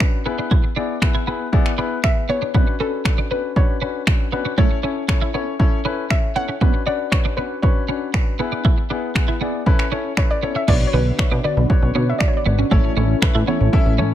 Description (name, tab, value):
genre	dance-pop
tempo	118 BPM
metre	4/4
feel	straight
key	B dorian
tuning	A4 = 442 Hz
part	soft round pluck	melody	0.0-12.5 s	A4 to F#5	-26 LUFS	left 1 dB	chorus, dub echo
part	dark baby grand piano	accompaniment	0.0-14.1 s	B3 to E5	-25 LUFS	left 6 dB	sidechain pumping
part	twelve-string electric guitar	riff	0.0-14.1 s	A3 to E4	-26 LUFS	right 5 dB	ensemble chorus
part	punchy analog drum machine	drums	0.0-13.8 s	crash cymbal, finger snaps, kick drum	-17 LUFS	equal	none
part	warm analog pad	sustained chords	10.7-14.1 s	D3 to F#4	-28 LUFS	equal	chorus, sidechain pumping
part	mallet-like synth pluck	arpeggios	10.7-14.1 s	D3 to E4	-30 LUFS	left 2 dB	none
part	plucky analog bass	bass	10.7-14.1 s	G#1 to B2	-18 LUFS	equal	sidechain pumping
room	little or no reverb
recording	none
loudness	-16 LUFS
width	side -12 dB against mid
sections	0.0-10.7 A section; 10.7-14.1 B section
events	none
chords	0.3 E; 2.5 Bmadd9; 4.6 A; 6.6 Bmadd9; 8.4 E; 9.7 Aadd9; 10.7 Bmadd9; 12.7 A